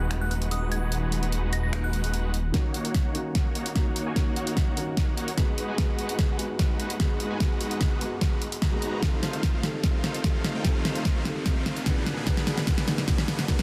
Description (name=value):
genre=future bass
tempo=148 BPM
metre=4/4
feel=half-time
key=Eb minor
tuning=A4 = 440 Hz
part: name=felt-muted upright piano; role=accompaniment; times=0.0-13.6 s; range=Bb2 to Cb5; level=-36 LUFS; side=equal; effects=sidechain pumping, digital delay
part: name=supersaw chords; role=riff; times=0.0-13.6 s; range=Ab3 to Bb5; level=-36 LUFS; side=equal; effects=sidechain pumping, low-pass filter
part: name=detuned saw bass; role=bass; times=0.0-13.6 s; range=Eb1 to Eb2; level=-36 LUFS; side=equal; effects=none
part: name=pop drum kit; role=drums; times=0.1-13.6 s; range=finger snaps, hi-hat, snare drum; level=-32 LUFS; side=equal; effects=soft clipping on snare
part: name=glassy synth bell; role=melody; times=0.2-2.2 s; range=Eb6 to Bb6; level=-39 LUFS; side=equal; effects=chorus, sidechain pumping, tape echo
part: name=electronic kick drum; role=drums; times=2.5-13.6 s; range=none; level=-28 LUFS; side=equal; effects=none
part: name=riser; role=sound effects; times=6.3-13.6 s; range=none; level=-44 LUFS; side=equal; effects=none
room=light reverb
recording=dense, heavily limited modern master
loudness=-27 LUFS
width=mono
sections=0.0-2.5 A section; 2.5-13.6 B section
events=build-up 2.5-13.6; drum fill 2.5-13.6; filter sweep on supersaw synth 2.5-13.6; riser 6.3-13.6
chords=0.0 Abm7/Eb; 2.5 Ebm7; 5.6 Abm7/Eb; 9.0 F7/Eb; 12.1 Bb7b9b13/Eb